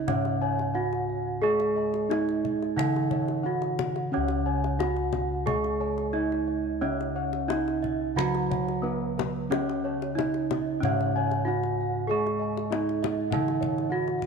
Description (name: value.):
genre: Javanese gamelan.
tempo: 90 BPM.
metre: 4/4.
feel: uneven beats.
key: Db slendro.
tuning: A4 = 441 Hz.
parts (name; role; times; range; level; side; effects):
gamelan-type bronze metallophone; melody; 0.0-14.3 s; Cb4-45c to Ab4+25c; -29 LUFS; right 2 dB; none.
gamelan-type bronze metallophone; accompaniment; 0.0-14.3 s; Db3 to Ab3+25c; -32 LUFS; right 9 dB; none.
gamelan-type bronze metallophone; arpeggios; 0.0-14.3 s; Cb5-45c to Ab5+25c; -36 LUFS; right 7 dB; none.
gamelan-type bossed gongs; bass; 0.0-14.3 s; Db2 to Ab4+25c; -32 LUFS; left 2 dB; none.
gamelan-type bossed gongs; arpeggios; 0.1-14.2 s; Cb5-45c to Ab5+25c; -35 LUFS; left 8 dB; none.
kendang; percussion; 0.1-14.3 s; none; -34 LUFS; left 12 dB; none.
room: moderate echo chamber reverb, RT60 2.5 s.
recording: 1960s-style stereo with parts hard left and right.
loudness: -25 LUFS.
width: side -5 dB against mid.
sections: 0.0-14.3 A section.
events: none.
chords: none.